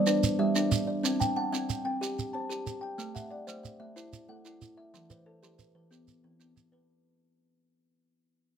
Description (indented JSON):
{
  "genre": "southern african traditional, mbira-style interlocking cycle",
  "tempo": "123 BPM (dotted quarters)",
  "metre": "12/8",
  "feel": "straight",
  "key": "unclear",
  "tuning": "A4 = 443 Hz",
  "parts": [
    { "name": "kalimba", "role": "arpeggios", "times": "0.0-7.0 s", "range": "E3 to A5", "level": "-32 LUFS", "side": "left 4 dB", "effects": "none" },
    { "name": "kalimba", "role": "arpeggios", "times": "0.0-7.1 s", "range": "E3 to A5", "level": "-32 LUFS", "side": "right 6 dB", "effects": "none" },
    { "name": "shekere", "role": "percussion", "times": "0.1-6.7 s", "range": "none", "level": "-32 LUFS", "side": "right 5 dB", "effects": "none" }
  ],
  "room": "moderate studio reverb, RT60 0.6 s",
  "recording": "none",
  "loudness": "-28 LUFS",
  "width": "side -8 dB against mid",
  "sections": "0.0-6.9 A section",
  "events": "fade-out 0.0-6.9",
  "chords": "0.0 G; 1.0 C; 3.0 Am; 4.9 Em"
}